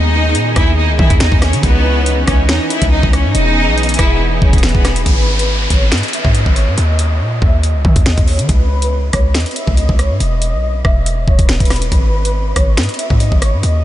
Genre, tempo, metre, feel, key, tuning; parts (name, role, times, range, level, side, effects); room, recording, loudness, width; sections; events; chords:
hip hop, drill; 140 BPM; 4/4; half-time; G# minor; A4 = 439 Hz
rich studio violin section; melody; 0.0-13.8 s; B3 to E6; -19 LUFS; equal; low-pass filter, tape echo
warm analog pad; sustained chords; 0.0-5.0 s; D#3 to G#4; -23 LUFS; right 1 dB; chorus
hard-hitting 808-style bass; bass; 0.0-13.8 s; D#1 to D#3; -15 LUFS; equal
drill drum kit; drums; 0.3-13.7 s; finger snaps, hi-hat, kick drum, rim click, snare drum; -15 LUFS; equal
downlifter; sound effects; 5.1-8.5 s; -24 LUFS; equal
light reverb; nothing above 10.9 kHz; -11 LUFS; side -13 dB against mid
0.0-5.1 A section; 5.1-13.8 B section
filter sweep on violin section 5.1-13.8
0.0 D#sus4; 1.6 C#madd9; 3.3 E; 5.1 G#m; 6.8 D#5; 8.5 C#madd9; 10.2 E5; 11.9 G#m